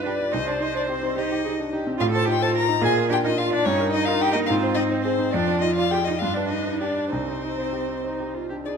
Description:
quick classical-period movement for piano quartet; 65-73 BPM (dotted quarters); 6/8; rubato; C minor; A4 = 440 Hz
dark violin; melody; 0.0-8.7 s; C5 to Bb5; -26 LUFS; left 6 dB
rich cello; second line; 0.0-8.6 s; C4 to Bb4; -28 LUFS; right 8 dB
warm concert grand piano; accompaniment; 0.0-8.8 s; C2 to D5; -26 LUFS; left 2 dB
warm viola; accompaniment; 0.0-8.8 s; C4 to C5; -28 LUFS; right 4 dB
moderate scoring stage reverb, RT60 1.5 s; -21 LUFS; side -6 dB against mid
0.0-8.8 A section
0.3 Cm; 2.0 F7/A; 2.8 Bb; 3.7 Eb/G; 4.5 Ab; 5.3 Ddim/F; 6.2 G; 7.1 Cm

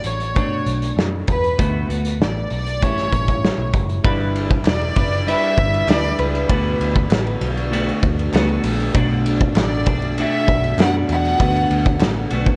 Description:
indie pop, bedroom pop; 98 BPM; 4/4; straight; D major; A4 = 440 Hz
rich fiddle; melody; 0.0-12.3 s; B4 to F#5; -26 LUFS; equal; analog chorus
semi-hollow electric guitar; accompaniment; 0.0-12.6 s; A2 to B4; -26 LUFS; equal; lush chorus, warbly pitch drift
vintage muted picked electric bass; bass; 0.0-12.6 s; E1 to F#2; -25 LUFS; equal
loose indie drum kit; drums; 0.0-12.6 s; hi-hat, kick drum, ride cymbal, snare drum; -22 LUFS; equal; vintage 12-bit sampler grit
warbly tape-like pad; sustained chords; 5.7-12.6 s; G3 to B4; -31 LUFS; equal
group handclap; percussion; 4.7-12.1 s; -37 LUFS; equal
light reverb, small room ambience; worn, warbling old tape, cassette tape, warbly pitch drift; -19 LUFS; mono
0.0-4.0 A section; 4.0-12.6 B section
0.0 Bm7; 1.6 D6; 2.8 A7; 4.0 G6; 6.5 D6; 8.9 Bm7; 11.4 D6

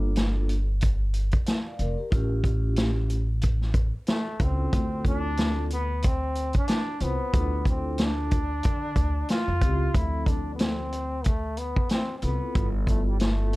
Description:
hip hop, jazz-hop; 92 BPM; 4/4; swing 58% on 16ths; D dorian; A4 = 440 Hz
vibraphone with soft mallets; accompaniment; 0.0-13.6 s; F3 to A5; -34 LUFS; left 1 dB
upright bass; bass; 0.0-13.6 s; F1 to D3; -27 LUFS; equal
vintage drum kit; drums; 0.2-13.6 s; hi-hat, kick drum, snare drum; -26 LUFS; equal
bright trombone; melody; 4.1-13.6 s; G3 to F4; -31 LUFS; equal
little or no reverb; dark, warm production; -23 LUFS; side -20 dB against mid
0.0-9.9 A section; 9.9-13.6 A section
0.0 Gm9; 2.1 A7b13; 4.7 Dm7; 12.6 G13

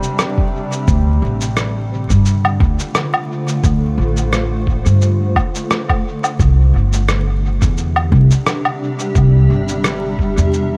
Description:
ambient dub; 87 BPM; 4/4; swing 55% on 16ths; D minor; A4 = 438 Hz
granular cloud pad; sustained chords; 0.0-10.8 s; C3 to E5; -24 LUFS; equal; built-in reverb
handpan; arpeggios; 0.0-0.7 s; C5; -45 LUFS; equal
electronic shaker, rim click and woodblock; drums; 0.0-10.7 s; -23 LUFS; equal; dub echo
electronic kick drum; drums; 0.4-10.3 s; -19 LUFS; equal
upright bass; bass; 0.9-10.8 s; G1 to G2; -16 LUFS; equal
light reverb, studio ambience; vinyl crackle; -16 LUFS; mono
0.9-10.8 A section
0.0 C; 0.9 Dm7; 6.4 C

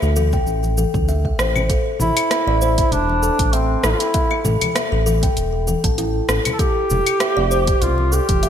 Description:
organic downtempo; 98 BPM; 4/4; swing 54% on 16ths; A minor; A4 = 440 Hz
kalimba; arpeggios; 0.0-8.5 s; E4 to A5; -23 LUFS; left 4 dB; ping-pong delay
smooth synth bass; bass; 0.0-8.5 s; E1 to D2; -20 LUFS; right 1 dB; tube saturation, sidechain pumping
deep house drum kit; drums; 0.0-8.5 s; claves, hi-hat, rim click, shaker; -24 LUFS; equal; overdrive, gated reverb
congas; percussion; 0.2-8.4 s; -28 LUFS; left 1 dB
electronic kick drum; drums; 0.3-8.4 s; -21 LUFS; right 1 dB
warm duduk; melody; 2.0-8.5 s; C4 to A4; -20 LUFS; right 2 dB; ping-pong delay
moderate lush hall reverb, RT60 2.6 s; bright 1980s-style digital production; -16 LUFS; side -9 dB against mid
0.0-8.5 A section
0.0 Dsus2; 1.7 Am; 6.6 Fadd9

